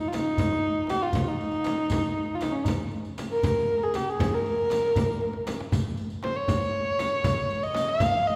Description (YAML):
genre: Persian modal ensemble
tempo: 79 BPM (dotted quarters)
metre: 6/8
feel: straight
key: unclear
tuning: A4 = 440 Hz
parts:
  - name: dark kamancheh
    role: melody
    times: 0.0-8.4 s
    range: Db4 to F5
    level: -28 LUFS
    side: equal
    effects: none
  - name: riq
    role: percussion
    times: 0.0-8.1 s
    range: none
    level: -39 LUFS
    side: equal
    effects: none
  - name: tombak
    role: percussion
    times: 0.0-8.3 s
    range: none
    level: -35 LUFS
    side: equal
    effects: none
  - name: frame drum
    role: percussion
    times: 0.1-8.1 s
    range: none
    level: -34 LUFS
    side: equal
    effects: none
room: wet recital hall reverb, RT60 1.8 s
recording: recorded in a church or concert hall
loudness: -27 LUFS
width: mono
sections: 0.0-8.4 A section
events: drum fill 5.2-5.7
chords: none